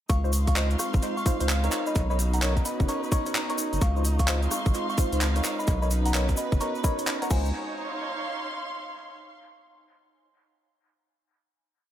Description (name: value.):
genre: UK garage, two-step garage.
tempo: 129 BPM.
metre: 4/4.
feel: swing 63% on 16ths.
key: Db major.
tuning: A4 = 439 Hz.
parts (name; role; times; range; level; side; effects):
soft synth bell; melody; 0.1-7.5 s; Eb5 to Db6; -34 LUFS; left 1 dB; chorus, dub echo.
airy breathy pad; sustained chords; 0.6-7.5 s; Ab3 to Gb4; -35 LUFS; equal; chorus, sidechain pumping.
saturated sub bass; bass; 0.1-7.5 s; Gb1 to Db2; -25 LUFS; equal; none.
electronic kick drum; drums; 0.1-7.4 s; none; -25 LUFS; equal; none.
garage drum kit; drums; 0.1-7.4 s; crash cymbal, handclaps, hi-hat, rim click; -32 LUFS; equal; dub echo.
egg shaker; percussion; 0.1-7.5 s; none; -37 LUFS; left 3 dB; none.
dark chamber string section; texture; 0.1-9.4 s; Eb4 to C6; -35 LUFS; right 2 dB; sidechain pumping.
percussive organ stab; stabs; 0.2-7.5 s; Eb4 to Db5; -33 LUFS; equal; wide subtle chorus, dub echo.
room: light reverb, digital ambience.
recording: echo-heavy mix.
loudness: -24 LUFS.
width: side -11 dB against mid.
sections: 0.1-7.5 drop; 7.5-9.4 final chord.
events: drop 0.1-7.5.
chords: 0.1 Dbmaj9; 1.7 Cbmaj9; 3.8 Dbmaj9; 5.4 Cbmaj9; 7.3 Dbmaj9.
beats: | 0.10 0.56 1.03 1.49 | 1.96 2.42 2.89 3.35 | 3.82 4.28 4.75 5.21 | 5.68 6.14 6.61 7.07 | 7.54 8.00 8.47 8.93.